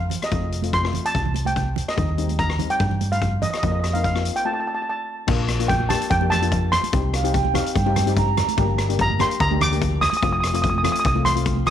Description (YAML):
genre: calypso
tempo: 146 BPM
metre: 4/4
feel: swing 54% on 16ths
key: Bb major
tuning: A4 = 440 Hz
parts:
  - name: steel pan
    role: melody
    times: 0.0-11.7 s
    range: Eb5 to Eb6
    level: -23 LUFS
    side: right 1 dB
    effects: none
  - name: hollow-body short-scale fingered electric bass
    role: bass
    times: 0.0-11.7 s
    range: F1 to G2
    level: -23 LUFS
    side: right 1 dB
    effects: none
  - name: street-band drum kit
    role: drums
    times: 0.1-11.7 s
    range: crash cymbal, hi-hat, kick drum, rim click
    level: -25 LUFS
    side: left 2 dB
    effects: none
  - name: congas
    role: percussion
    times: 0.1-11.7 s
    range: none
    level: -30 LUFS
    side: right 11 dB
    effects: none
  - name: steel pan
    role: accompaniment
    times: 0.3-11.7 s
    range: G3 to G4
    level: -28 LUFS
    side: left 11 dB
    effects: none
  - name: mellow baroque flute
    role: second line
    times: 7.1-8.9 s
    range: F5 to Bb5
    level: -25 LUFS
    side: right 9 dB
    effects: none
room: light reverb, small room reverb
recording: 1960s-style stereo with parts hard left and right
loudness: -19 LUFS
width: side -10 dB against mid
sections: 0.0-5.3 A section; 5.3-11.7 B section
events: break 4.5-5.3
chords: 0.3 F; 2.0 Cm/Eb; 3.6 Fsus4; 4.5 F; 5.3 Bbmaj7; 6.9 Cm7; 8.6 Gm; 10.2 F